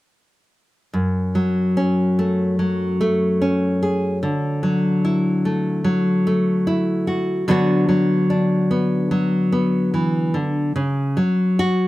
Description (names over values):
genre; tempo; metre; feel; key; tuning
folk; 73 BPM; 4/4; straight; F# minor; A4 = 440 Hz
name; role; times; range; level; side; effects
nylon-string guitar; accompaniment; 0.9-11.9 s; F#2 to G#4; -17 LUFS; equal; none
room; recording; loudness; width
light reverb; close, detailed microphones; -17 LUFS; side -17 dB against mid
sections
0.9-11.9 A section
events
none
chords
0.9 F#m; 4.2 Dadd9; 7.5 Bm/D; 10.8 C#sus4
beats
| 0.93 1.76 2.58 3.40 | 4.22 5.04 5.85 6.67 | 7.49 8.30 9.12 9.94 | 10.76 11.59